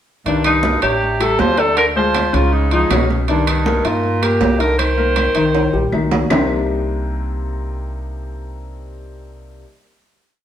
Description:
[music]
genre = Afro-Cuban jazz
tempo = 159 BPM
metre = 4/4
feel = straight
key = C minor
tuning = A4 = 441 Hz
[part]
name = clear alto saxophone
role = melody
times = 0.3-5.9 s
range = D4 to C5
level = -18 LUFS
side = left 1 dB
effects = none
[part]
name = breathy baritone saxophone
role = second line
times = 0.3-5.9 s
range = G2 to F3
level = -22 LUFS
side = right 3 dB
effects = none
[part]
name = warm baby grand piano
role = accompaniment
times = 0.3-9.6 s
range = Cb3 to Eb5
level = -21 LUFS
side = left 3 dB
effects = none
[part]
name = upright bass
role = bass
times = 0.3-9.6 s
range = A1 to G2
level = -22 LUFS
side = equal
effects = none
[part]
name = congas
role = percussion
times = 0.3-6.4 s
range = none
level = -24 LUFS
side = right 1 dB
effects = none
[part]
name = timbales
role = percussion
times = 0.3-6.4 s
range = none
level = -24 LUFS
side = right 6 dB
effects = none
[part]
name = claves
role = percussion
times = 0.4-6.4 s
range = none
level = -31 LUFS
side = left 1 dB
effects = none
[sound]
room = wet stone room reverb, RT60 1.0 s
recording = band playing live in one room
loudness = -14 LUFS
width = side -10 dB against mid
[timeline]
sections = 0.3-6.3 A section; 6.3-9.3 final chord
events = drum fill 5.5-6.3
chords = 0.3 Cm9; 1.0 F69/A; 1.8 Dm7b5; 2.5 Db9; 3.3 Cm7; 6.3 Cm9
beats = | 0.26 0.64 1.02 1.39 | 1.77 2.15 2.53 2.90 | 3.28 3.66 4.04 4.42 | 4.79 5.17 5.55 5.93 | 6.30 6.68 7.06 7.44 | 7.82 8.20 8.57 8.95

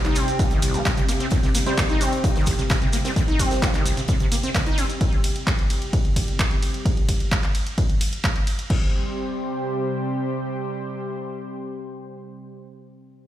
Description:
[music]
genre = acid house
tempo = 130 BPM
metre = 4/4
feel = straight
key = unclear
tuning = A4 = 442 Hz
[part]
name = lush unison pad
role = sustained chords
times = 0.0-12.5 s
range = C2 to C5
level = -29 LUFS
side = equal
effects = chorus, sidechain pumping
[part]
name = overdriven acid bass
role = riff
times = 0.0-4.8 s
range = C2 to Eb4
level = -26 LUFS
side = equal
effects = distortion, lush chorus, sidechain pumping, digital delay
[part]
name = punchy analog drum machine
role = drums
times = 0.0-8.8 s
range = crash cymbal, handclaps, hi-hat, ride cymbal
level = -28 LUFS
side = right 1 dB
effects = none
[part]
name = maracas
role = percussion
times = 0.0-5.0 s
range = none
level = -33 LUFS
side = right 2 dB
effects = none
[part]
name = modern studio drum kit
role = drums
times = 0.1-4.9 s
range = hi-hat, snare drum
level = -37 LUFS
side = left 2 dB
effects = sidechain pumping on hats, high-pass filter on hats, high-pass filter on snare, high-pass filter on room
[part]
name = electronic kick drum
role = drums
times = 0.4-8.8 s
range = none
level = -21 LUFS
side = equal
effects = none
[part]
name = barky tine electric piano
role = stabs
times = 1.7-1.8 s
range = G3 to C5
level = -31 LUFS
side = right 2 dB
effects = none
[sound]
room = light reverb, digital ambience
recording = played on a big sound system in a bare room, stone room reverb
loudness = -20 LUFS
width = side -12 dB against mid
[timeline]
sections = 0.0-8.7 A section; 8.7-12.4 B section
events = drop 0.0-8.7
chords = 0.0 C5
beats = 0.39 0.85 | 1.32 1.78 2.24 2.70 | 3.16 3.62 4.09 4.55 | 5.01 5.47 5.93 6.39 | 6.86 7.32 7.78 8.24 | 8.70 9.16 9.62 10.09 | 10.55 11.01 11.47 11.93

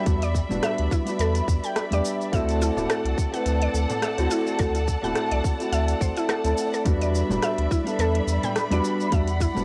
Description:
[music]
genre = organic downtempo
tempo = 106 BPM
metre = 4/4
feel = swing 56% on 16ths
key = unclear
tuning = A4 = 441 Hz
[part]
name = felt-muted upright piano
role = accompaniment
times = 0.0-9.6 s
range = G3 to B4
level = -30 LUFS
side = equal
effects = sidechain pumping, cassette tape, tape echo
[part]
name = rich symphonic string section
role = sustained chords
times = 0.0-9.6 s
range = G3 to B5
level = -32 LUFS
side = equal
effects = sidechain pumping, cassette tape
[part]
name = mallet-like synth pluck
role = arpeggios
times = 0.0-9.5 s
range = E4 to G5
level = -33 LUFS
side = equal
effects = chorus, cassette tape, tape echo
[part]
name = warm sub bass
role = bass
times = 0.1-9.6 s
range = D1 to E2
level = -28 LUFS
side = equal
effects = tube saturation, sidechain pumping
[part]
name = electronic kick drum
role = drums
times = 0.1-9.5 s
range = none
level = -27 LUFS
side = equal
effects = none
[part]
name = organic electronic drum kit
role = drums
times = 0.1-9.6 s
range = cabasa, hi-hat, rim click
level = -34 LUFS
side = equal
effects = none
[part]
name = frame drum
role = percussion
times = 0.5-9.6 s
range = none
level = -37 LUFS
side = equal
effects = none
[sound]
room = moderate booth ambience, RT60 0.2 s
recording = home recording on cassette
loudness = -24 LUFS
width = mono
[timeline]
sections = 0.0-9.6 A section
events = none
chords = 0.0 Em7; 2.3 D7; 6.9 Em7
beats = | 0.07 0.63 1.20 1.76 | 2.33 2.90 3.46 4.03 | 4.59 5.16 5.73 6.29 | 6.86 7.42 7.99 8.56 | 9.12

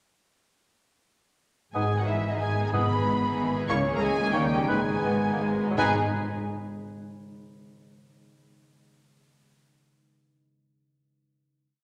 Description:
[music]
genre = classical, dramatic, fast romantic movement for symphony orchestra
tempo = 164-188 BPM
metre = 3/4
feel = rubato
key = G# minor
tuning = A4 = 439 Hz
[part]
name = warm symphonic violin section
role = melody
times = 1.7-6.0 s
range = D#5 to C#6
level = -36 LUFS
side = equal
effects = none
[part]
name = bright small flute group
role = second line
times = 1.7-6.0 s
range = D#5 to C#6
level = -38 LUFS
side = equal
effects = none
[part]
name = clear bassoon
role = accompaniment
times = 1.7-5.9 s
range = F#3 to B3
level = -38 LUFS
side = equal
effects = none
[part]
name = mellow French horn section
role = sustained chords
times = 1.7-5.9 s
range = D#3 to C#4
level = -35 LUFS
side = equal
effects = none
[part]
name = concert harp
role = arpeggios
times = 1.7-6.0 s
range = G#2 to E5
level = -38 LUFS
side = equal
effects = none
[part]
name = mellow trumpet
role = stabs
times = 1.7-5.9 s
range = D#4 to C#5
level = -37 LUFS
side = equal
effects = none
[part]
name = rich symphonic cello section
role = bass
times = 1.7-6.0 s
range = C#2 to G#2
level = -34 LUFS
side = equal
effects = none
[part]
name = warm studio double bass section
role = bass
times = 1.7-6.0 s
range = G#1 to D#2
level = -36 LUFS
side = equal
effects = none
[part]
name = warm clarinet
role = second line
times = 1.8-5.9 s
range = D#4 to E4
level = -40 LUFS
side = equal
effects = none
[part]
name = warm oboe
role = second line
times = 1.8-5.9 s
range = B4 to D#5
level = -36 LUFS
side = equal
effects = none
[part]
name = warm symphonic violin section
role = second line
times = 1.9-6.0 s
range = B3 to G#4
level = -37 LUFS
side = equal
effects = none
[part]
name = rich symphonic viola section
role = accompaniment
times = 1.9-6.0 s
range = D#3 to B3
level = -41 LUFS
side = equal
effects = none
[part]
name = timpani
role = percussion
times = 2.7-3.2, 5.8-5.9 s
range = G#2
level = -37 LUFS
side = equal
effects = none
[sound]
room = wet scoring stage reverb, RT60 1.7 s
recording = none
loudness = -26 LUFS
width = mono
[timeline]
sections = 1.7-5.8 A section; 5.8-6.8 final chord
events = slowing down 3.2-5.8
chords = 1.7 G#m; 2.7 Emaj7/G#; 3.7 A#m7b5/C#; 4.4 D#7; 4.7 G#m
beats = | 1.75 2.08 2.41 | 2.73 3.05 3.38 | 3.70 4.02 4.35 | 4.70 5.05 5.42 | 5.78

